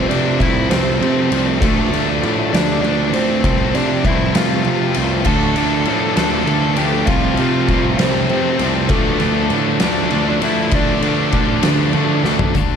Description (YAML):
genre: quiet-loud alternative rock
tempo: 66 BPM (dotted quarters)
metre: 6/8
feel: straight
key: D minor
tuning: A4 = 440 Hz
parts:
  - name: dark smooth lead guitar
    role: melody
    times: 0.0-11.9 s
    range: A3 to A5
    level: -22 LUFS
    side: equal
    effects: overdrive
  - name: tonewheel organ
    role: sustained chords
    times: 0.0-12.5 s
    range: F3 to A5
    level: -31 LUFS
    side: equal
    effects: none
  - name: thick fuzz guitar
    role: riff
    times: 0.0-12.5 s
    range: C3 to D4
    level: -21 LUFS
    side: right 11 dB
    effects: distortion
  - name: tight distorted guitar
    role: riff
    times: 0.0-12.8 s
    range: C3 to D4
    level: -22 LUFS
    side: left 14 dB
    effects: distortion
  - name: fuzz picked electric bass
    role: bass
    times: 0.0-12.8 s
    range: C2 to D3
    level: -21 LUFS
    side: left 1 dB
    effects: overdrive
  - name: oversized low-tuned drum kit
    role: drums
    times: 0.1-12.7 s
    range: crash cymbal, hi-hat, kick drum, ride cymbal, snare drum, toms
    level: -20 LUFS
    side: left 1 dB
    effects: none
  - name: high-gain distorted guitar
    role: riff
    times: 5.3-12.5 s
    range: F2 to D4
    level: -24 LUFS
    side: right 1 dB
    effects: distortion
  - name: twelve-string electric guitar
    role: arpeggios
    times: 12.5-12.8 s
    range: D3 to F4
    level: -26 LUFS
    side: left 8 dB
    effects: analog chorus
room: light reverb, studio reverb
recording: none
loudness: -14 LUFS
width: side -7 dB against mid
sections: 0.0-12.5 A section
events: drum fill 12.2-12.5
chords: 0.0 F/C; 1.6 Dm; 3.4 F/C; 5.3 Dm; 7.1 F/C; 8.9 Dm